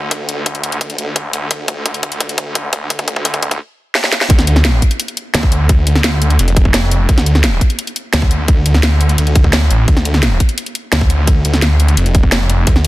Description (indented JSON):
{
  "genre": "dark technical drum and bass",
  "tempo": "172 BPM",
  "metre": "4/4",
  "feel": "straight",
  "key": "D minor",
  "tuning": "A4 = 440 Hz",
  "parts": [
    { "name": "snarling distorted saw bass", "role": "bass", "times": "0.0-12.9 s", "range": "F1 to D2", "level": "-14 LUFS", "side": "equal", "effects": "tube saturation, sidechain pumping, high-pass filter" },
    { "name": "drum and bass drum kit", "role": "drums", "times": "0.1-12.9 s", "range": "hi-hat, snare drum", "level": "-17 LUFS", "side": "equal", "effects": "overdrive, high-pass filter on hats, high-pass filter on snare" },
    { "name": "electronic kick drum", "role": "drums", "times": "0.1-12.7 s", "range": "none", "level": "-13 LUFS", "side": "equal", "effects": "overdrive, high-pass filter on kick" }
  ],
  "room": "digital ambience",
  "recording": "dense, heavily limited modern master",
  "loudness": "-12 LUFS",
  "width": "side -17 dB against mid",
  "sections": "0.0-4.3 A section; 4.3-12.9 B section",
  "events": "build-up 0.0-4.3; drum fill 0.0-3.6, 3.9-4.3; drop 4.3-12.9",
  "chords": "none"
}